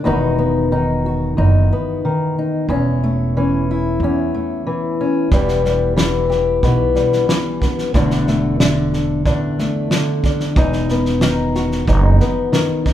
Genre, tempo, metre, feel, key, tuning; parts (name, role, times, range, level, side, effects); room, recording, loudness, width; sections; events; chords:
acoustic folk duo or small band; 91 BPM; 4/4; straight; A4 = 440 Hz
fingerpicked old ladder-braced acoustic guitar; accompaniment; 0.0-12.9 s; E2 to A4; -17 LUFS; left 2 dB
upright bass; bass; 0.1-12.2 s; E1 to E2; -19 LUFS; right 1 dB
loose indie drum kit; drums; 5.3-12.9 s; kick drum, snare drum; -20 LUFS; right 1 dB
moderate large studio reverb, RT60 1.4 s; band playing live in one room; -15 LUFS; side -11 dB against mid
0.0-12.9 A section
0.1 B/E; 2.7 A/E; 5.3 Em; 7.9 D/E; 10.6 B/E